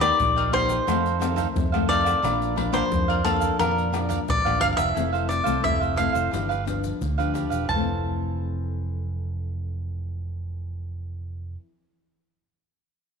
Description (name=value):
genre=samba and choro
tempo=88 BPM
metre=4/4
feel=straight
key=Bb major, F major from 5.0 s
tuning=A4 = 440 Hz
part: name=cavaquinho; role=melody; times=0.0-11.5 s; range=A4 to A5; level=-24 LUFS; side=equal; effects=slapback echo
part: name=cavaquinho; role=accompaniment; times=0.0-11.6 s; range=D4 to G5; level=-30 LUFS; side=right 12 dB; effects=none
part: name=nylon-string guitar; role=accompaniment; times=0.0-11.7 s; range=F2 to G4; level=-29 LUFS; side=left 8 dB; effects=none
part: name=fingered electric bass with an envelope filter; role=bass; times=0.0-11.6 s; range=E1 to F2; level=-28 LUFS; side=right 2 dB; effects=none
part: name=agogo bells, egg shaker, surdo, pandeiro and tamborim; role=percussion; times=0.0-7.8 s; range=none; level=-30 LUFS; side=left 3 dB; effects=none
room=moderate echo chamber reverb, RT60 1.7 s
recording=1960s-style stereo with parts hard left and right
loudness=-22 LUFS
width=side -5 dB against mid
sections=0.0-5.0 A section; 5.0-7.7 B section; 7.7-10.4 C section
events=none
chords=0.0 Eb; 0.9 F7; 2.2 Bb; 5.0 Fmaj7; 6.3 G7; 7.7 Fmaj7